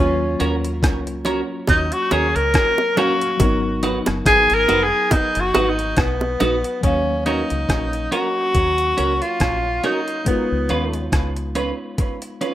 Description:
lovers rock reggae; 70 BPM; 4/4; swing 56% on 16ths; Eb minor; A4 = 443 Hz
warm tenor saxophone; melody; 0.0-11.1 s; Cb4 to Bb4; -19 LUFS; left 1 dB; tape echo
mellow tine electric piano; accompaniment; 0.0-12.5 s; Gb3 to F5; -27 LUFS; left 2 dB; medium stereo tremolo
deep dub fingered electric bass; bass; 0.0-11.7 s; F1 to Eb2; -24 LUFS; equal
twelve-string electric guitar; stabs; 0.4-12.5 s; Db4 to Cb5; -25 LUFS; right 3 dB; spring reverb, dub echo
detuned 8-bit digital drum machine; drums; 0.4-12.5 s; hi-hat, kick drum, rim click; -21 LUFS; equal; overdrive
bongos; percussion; 1.2-6.6 s; -24 LUFS; right 3 dB
light reverb; rough home demo mix; -17 LUFS; side -13 dB against mid
0.0-6.8 A section; 6.8-12.5 B section
tenor saxophone solo 0.0-6.8
0.0 Ebm7; 3.4 Abm7; 6.8 Ebm7; 10.3 Db7

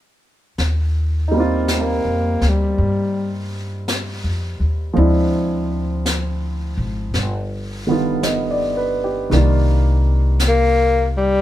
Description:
jazz ballad; 55 BPM; 4/4; swing 67% on 8ths; Eb major; A4 = 440 Hz
upright bass; bass; 0.6-11.4 s; G1 to G2; -19 LUFS; equal
jazz brush drum kit; drums; 0.6-11.4 s; brushed snare drum, hi-hat, snare drum; -27 LUFS; left 1 dB
warm grand piano; accompaniment; 1.3-11.4 s; D3 to Eb5; -21 LUFS; right 2 dB
breathy tenor saxophone; melody; 1.8-3.6, 10.5-11.4 s; G3 to Bb3; -18 LUFS; left 2 dB
light reverb; band playing live in one room; -16 LUFS; side -13 dB against mid
0.6-11.4 A section
stop 0.0-0.6; tenor saxophone solo 0.6-11.4
0.0 N.C.; 0.6 Eb69; 5.0 Dm7b5; 7.1 G7b13; 9.3 Cm11

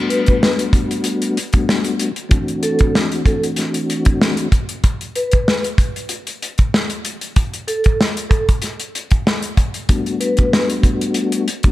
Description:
hip hop, boom-bap hip-hop; 95 BPM; 4/4; swing 55% on 16ths; G major; A4 = 440 Hz
mellow tonewheel organ; accompaniment; 0.0-4.5, 9.9-11.7 s; E3 to F#4; -20 LUFS; left 2 dB; chorus vibrato, slow rotary speaker, cassette tape, high-pass filter, low-pass filter
vibraphone with medium mallets; melody; 0.1-10.7 s; A4 to B4; -22 LUFS; equal; high-pass filter, low-pass filter
warm soul drum kit; drums; 0.1-11.7 s; hi-hat, kick drum, snare drum; -16 LUFS; equal
small room ambience; -15 LUFS; side -16 dB against mid
0.0-11.7 A section
0.0 Gmaj7; 2.3 D7; 4.8 N.C.; 9.9 Gmaj7

